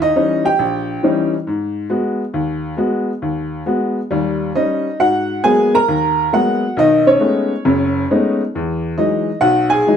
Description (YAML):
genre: solo jazz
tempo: 136 BPM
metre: 4/4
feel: swing 66% on 8ths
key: G# minor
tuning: A4 = 438 Hz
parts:
  - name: clear upright piano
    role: solo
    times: 0.0-10.0 s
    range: F#1 to A#5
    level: -14 LUFS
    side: equal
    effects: none
room: moderate club reverb, RT60 0.7 s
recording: none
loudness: -14 LUFS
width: side -8 dB against mid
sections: 0.0-5.0 A section; 5.0-10.0 B section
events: none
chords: 0.0 D#7b9; 1.5 G#m7; 4.1 D#7; 5.0 G#m9; 6.8 B13; 8.5 Emaj9